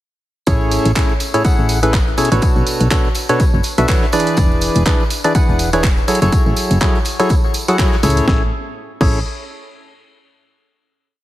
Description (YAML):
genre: piano house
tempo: 123 BPM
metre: 4/4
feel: swing 57% on 16ths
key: A major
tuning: A4 = 439 Hz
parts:
  - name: percussive organ stab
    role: riff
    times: 0.5-9.2 s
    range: A2 to F#5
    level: -17 LUFS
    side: equal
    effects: chorus, sidechain pumping, ping-pong delay
  - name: solid FM bass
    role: bass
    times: 0.5-9.2 s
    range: E1 to C#2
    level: -17 LUFS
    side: equal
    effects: tube saturation, sidechain pumping
  - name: electronic kick drum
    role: drums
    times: 0.5-9.1 s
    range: none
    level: -16 LUFS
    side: equal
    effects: none
  - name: house drum kit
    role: drums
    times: 0.5-9.1 s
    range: crash cymbal, handclaps, hi-hat, snare drum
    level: -24 LUFS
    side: right 1 dB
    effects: none
  - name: soft brush drum kit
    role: drums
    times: 0.5-8.2 s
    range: hi-hat, snare drum, tambourine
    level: -33 LUFS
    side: right 1 dB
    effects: none
  - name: tambourine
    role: percussion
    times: 0.5-8.3 s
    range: none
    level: -32 LUFS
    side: right 1 dB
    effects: none
room: light reverb, studio reverb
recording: heavily compressed radio sound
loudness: -13 LUFS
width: side -15 dB against mid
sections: 0.5-8.3 drop; 8.3-10.2 final chord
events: drop 0.5-8.3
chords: 0.5 Amaj7; 2.4 Bm9; 4.1 E7; 6.1 F#m9; 8.3 Amaj7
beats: | 0.47 0.96 1.45 1.93 | 2.42 2.91 3.40 3.89 | 4.37 4.86 5.35 5.84 | 6.33 6.81 7.30 7.79 | 8.28 8.76